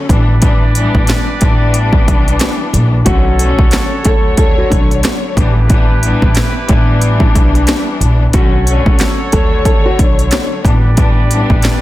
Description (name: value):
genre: hip hop, boom-bap hip-hop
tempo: 91 BPM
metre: 4/4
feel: swing 60% on 16ths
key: unclear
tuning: A4 = 441 Hz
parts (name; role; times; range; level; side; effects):
- clear studio string section; accompaniment; 0.0-11.8 s; D3 to C#5; -18 LUFS; left 4 dB; cassette tape, high-pass filter, low-pass filter
- clear horn section; stabs; 0.1-11.8 s; E4 to D5; -23 LUFS; right 2 dB; high-pass filter, low-pass filter, ping-pong delay
- upright bass; bass; 0.1-11.6 s; A1 to D2; -14 LUFS; equal; none
- techno drum kit; drums; 0.1-11.8 s; handclaps, hi-hat, kick drum, snare drum; -12 LUFS; equal; none
- finger snaps; percussion; 1.1-11.8 s; none; -30 LUFS; right 7 dB; none
- nylon-string guitar; melody; 3.1-10.5 s; D4 to A4; -20 LUFS; equal; high-pass filter, low-pass filter, ping-pong delay
room: studio reverb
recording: dense, heavily limited modern master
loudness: -9 LUFS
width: side -16 dB against mid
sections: 0.0-11.8 A section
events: break 0.0-3.1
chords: 0.1 A9sus4; 3.1 Bm9; 5.4 A9sus4; 8.3 Bm9; 10.6 A9sus4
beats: | 0.42 1.08 1.74 2.40 | 3.06 3.72 4.38 5.04 | 5.70 6.36 7.02 7.68 | 8.34 9.00 9.65 10.31 | 10.97 11.63